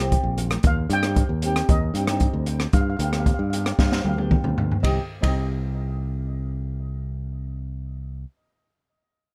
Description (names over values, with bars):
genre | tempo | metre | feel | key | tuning
calypso | 114 BPM | 4/4 | straight | C minor | A4 = 445 Hz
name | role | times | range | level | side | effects
nylon-string guitar | accompaniment | 0.0-8.3 s | B3 to G4 | -33 LUFS | equal | double-tracked, plate reverb
modern bright fingered electric bass | bass | 0.0-8.2 s | Bb1 to G2 | -28 LUFS | equal | none
open jazz drum kit | drums | 0.1-5.4 s | hi-hat, kick drum, ride cymbal, rim click, snare drum, toms | -25 LUFS | equal | none
congas | percussion | 0.4-0.6 s | none | -37 LUFS | equal | none
steel pan | melody | 0.7-8.2 s | Eb5 to G5 | -34 LUFS | equal | tape echo
room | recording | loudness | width
little or no reverb | rough home demo mix | -23 LUFS | mono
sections
0.0-4.8 A section; 4.8-9.0 B section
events
drum fill 3.8-4.8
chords
0.0 Fsus2; 0.6 Cm/Eb; 2.7 G; 4.8 Cm